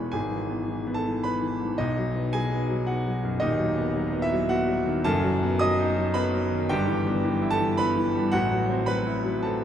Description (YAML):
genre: classical, virtuoso piano study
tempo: 110 BPM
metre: 3/4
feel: rubato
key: E minor from 5.0 s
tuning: A4 = 440 Hz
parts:
  - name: warm concert grand piano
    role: solo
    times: 0.0-9.6 s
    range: D#1 to D#6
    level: -23 LUFS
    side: equal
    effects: none
room: wet cathedral reverb, RT60 5.7 s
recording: in a vast, echoing space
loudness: -23 LUFS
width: side -9 dB against mid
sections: 0.0-9.6 A section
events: none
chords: 0.1 E/G#; 1.8 B; 3.4 B/D#; 5.0 B7/F#; 6.7 Em/G; 8.3 F#m7b5/A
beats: | 0.14 0.69 1.25 | 1.80 2.34 2.88 | 3.42 3.96 4.50 | 5.05 5.60 6.14 | 6.69 7.24 7.78 | 8.33 8.88 9.45